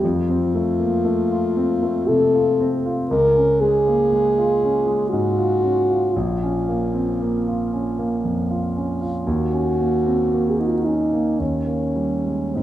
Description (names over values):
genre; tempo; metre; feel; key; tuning
classical, romantic duo for French horn and grand piano; 49-60 BPM; 3/4; rubato; unclear; A4 = 440 Hz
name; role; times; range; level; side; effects
mellow French horn; melody; 0.0-12.6 s; C4 to Bb4; -20 LUFS; left 1 dB; none
warm concert grand piano; accompaniment; 0.0-12.6 s; Bb1 to F4; -21 LUFS; right 2 dB; none
room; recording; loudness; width
wet recital hall reverb, RT60 1.4 s; minimal, uncompressed stereo recording; -18 LUFS; side -13 dB against mid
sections
0.0-12.6 A section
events
none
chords
0.0 F; 3.1 Db; 6.1 Bbm; 9.3 Ebm7; 11.4 Eb7